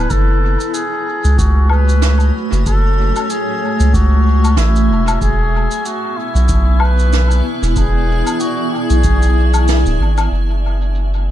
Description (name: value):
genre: ambient dub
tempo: 94 BPM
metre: 4/4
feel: swing 57% on 16ths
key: F# minor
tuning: A4 = 442 Hz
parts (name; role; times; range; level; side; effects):
- trumpet with cup mute; melody; 0.0-10.0 s; E4 to B4; -21 LUFS; left 1 dB; dub echo
- granular cloud pad; sustained chords; 0.0-11.3 s; A3 to G#5; -21 LUFS; equal; built-in reverb
- soft dub sub bass; bass; 0.0-11.3 s; D1 to C#2; -13 LUFS; equal; none
- electronic kick drum; drums; 0.1-9.2 s; none; -19 LUFS; equal; none
- shaker, woodblock and snare drum; drums; 0.1-11.2 s; none; -25 LUFS; left 1 dB; low-pass filter on snare, low-pass filter on perc, low-pass filter on room, dub echo
room: studio reverb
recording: echo-heavy mix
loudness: -12 LUFS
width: side -12 dB against mid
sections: 0.0-10.3 A section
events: band accent 9.7-10.0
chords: 0.1 F#m9; 5.2 E7; 10.3 F#m9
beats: | 0.10 0.74 1.38 2.02 | 2.66 3.30 3.94 4.57 | 5.21 5.85 6.49 7.13 | 7.76 8.40 9.04 9.68 | 10.32 10.96